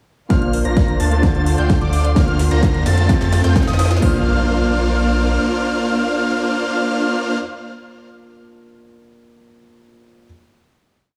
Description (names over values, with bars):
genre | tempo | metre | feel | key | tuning
EDM, festival progressive house | 129 BPM | 4/4 | straight | Bb major | A4 = 444 Hz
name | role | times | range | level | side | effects
dark baby grand piano | accompaniment | 0.3-10.3 s | Bb2 to C5 | -27 LUFS | equal | vintage 12-bit sampler grit, sidechain pumping, digital delay
dark studio string section | sustained chords | 0.3-7.4 s | Bb3 to C6 | -32 LUFS | equal | none
unison lead | arpeggios | 0.3-7.4 s | D6 to Bb6 | -28 LUFS | equal | sidechain pumping, digital delay
big supersaw lead | riff | 0.3-7.4 s | A3 to Bb5 | -24 LUFS | equal | cassette tape, sidechain pumping, low-pass filter, digital delay
saturated sub bass | bass | 0.3-5.4 s | Bb1 to F2 | -21 LUFS | equal | sidechain pumping
house drum kit | drums | 0.3-4.1 s | hi-hat, kick drum | -20 LUFS | equal | overdrive
house drum kit | drums | 0.3-4.1 s | hi-hat, snare drum | -32 LUFS | equal | overdrive, high-pass filter on snare, high-pass filter on hats, high-pass filter on room
riser and impact | sound effects | 2.7-7.4 s | none | -32 LUFS | equal | none
room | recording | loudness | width
light reverb, digital ambience | studio reverb | -17 LUFS | mono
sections
0.3-4.0 build; 4.0-7.7 final chord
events
build-up 0.3-4.0; drum fill 0.3-4.0; filter sweep on supersaw synth 0.3-4.0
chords
0.3 Bbadd9; 1.2 Dm7; 2.2 Bbadd9/D; 3.1 F; 4.0 Bbadd9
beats
| 0.30 0.77 1.23 1.70 | 2.16 2.63 3.09 3.56 | 4.02 4.49 4.95 5.42 | 5.88 6.35 6.81 7.28